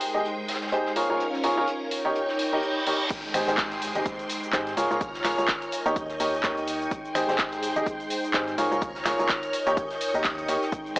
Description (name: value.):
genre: piano house.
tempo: 126 BPM.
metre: 4/4.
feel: swing 57% on 16ths.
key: Ab major.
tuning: A4 = 441 Hz.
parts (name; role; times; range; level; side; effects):
string machine, violins; sustained chords; 0.0-11.0 s; Ab3 to G6; -33 LUFS; equal; ensemble chorus, sidechain pumping.
clear upright piano; riff; 0.0-11.0 s; Eb4 to Eb5; -27 LUFS; equal; sidechain pumping, tape echo.
house drum kit; drums; 0.0-11.0 s; cabasa, crash cymbal, finger snaps, handclaps, hi-hat; -30 LUFS; equal; none.
jazz brush drum kit; drums; 0.0-11.0 s; hi-hat, snare drum; -40 LUFS; equal; none.
warbly tape-like pad; texture; 0.0-11.0 s; Ab3 to Ab5; -32 LUFS; equal; chorus, built-in reverb, sidechain pumping.
reverse cymbal and downlifter; sound effects; 2.4-6.9 s; none; -34 LUFS; right 1 dB; none.
electronic kick drum; drums; 3.1-10.8 s; none; -33 LUFS; equal; none.
organ-like FM bass; bass; 3.3-11.0 s; Ab1 to Ab2; -41 LUFS; equal; transformer saturation, sidechain pumping.
room: light reverb, digital ambience.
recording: dry, gritty hardware recording, cassette tape, AM radio sound.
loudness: -24 LUFS.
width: side -23 dB against mid.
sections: 0.0-3.1 A section; 3.1-11.0 B section.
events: filter sweep on string machine 0.0-3.1; reverse cymbal 2.4-3.1; drop 3.1-11.0.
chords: 0.0 Abmaj7; 1.0 Db6; 1.9 Eb7; 3.1 Abmaj7; 4.8 Db6; 5.7 Eb7; 6.9 Abmaj7; 8.6 Db6; 9.5 Eb7.